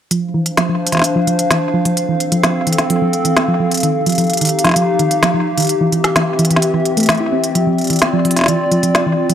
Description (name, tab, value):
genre	IDM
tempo	129 BPM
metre	4/4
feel	straight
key	unclear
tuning	A4 = 440 Hz
part	warbly tape-like pad	sustained chords	0.5-9.3 s	E3 to F5	-17 LUFS	left 1 dB	chorus, built-in reverb
part	thumb-piano-like synth pluck	arpeggios	0.1-9.3 s	Eb3 to E4	-17 LUFS	right 1 dB	chorus, tape echo
part	organic electronic drum kit	drums	0.1-9.3 s	hi-hat, snare drum	-17 LUFS	equal	small room ambience, tape echo
room	light reverb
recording	dry, gritty hardware recording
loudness	-12 LUFS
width	side -9 dB against mid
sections	0.1-9.3 A section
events	filter sweep on synth arpeggio sound 0.1-9.3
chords	0.1 Dm7; 2.0 F; 3.8 Ebadd9; 5.7 C/E; 7.6 Dm7